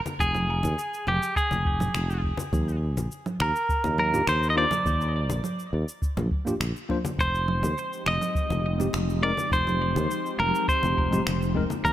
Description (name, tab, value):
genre	sunset chillout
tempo	103 BPM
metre	4/4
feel	straight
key	F dorian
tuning	A4 = 439 Hz
part	electronic shaker, congas and finger snaps	drums	0.1-11.9 s	none	-33 LUFS	right 2 dB	studio reverb
part	congas	percussion	0.1-11.8 s	none	-35 LUFS	left 3 dB	none
part	clean electric guitar	melody	0.2-11.9 s	G4 to Eb5	-26 LUFS	right 1 dB	digital delay
part	sustaining fretless electric bass	bass	0.2-11.9 s	F1 to Eb2	-27 LUFS	equal	none
part	electronic kick drum	drums	0.2-11.9 s	none	-29 LUFS	equal	studio reverb
part	tine electric piano	accompaniment	4.1-11.6 s	Ab3 to C5	-32 LUFS	moving between left 6 dB and right 3 dB	auto-pan, digital delay
part	ethereal airy pad	sustained chords	7.6-11.9 s	F3 to G4	-33 LUFS	left 1 dB	ensemble chorus, built-in reverb
room	light reverb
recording	none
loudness	-23 LUFS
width	side -12 dB against mid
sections	0.0-11.9 A section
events	none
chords	0.0 Fm; 2.5 Ebmaj7(no3); 7.2 Fm9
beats	| 0.20 0.78 1.36 1.94 | 2.53 3.11 3.69 4.27 | 4.86 5.44 6.02 6.60 | 7.19 7.77 8.35 8.93 | 9.52 10.10 10.68 11.26 | 11.85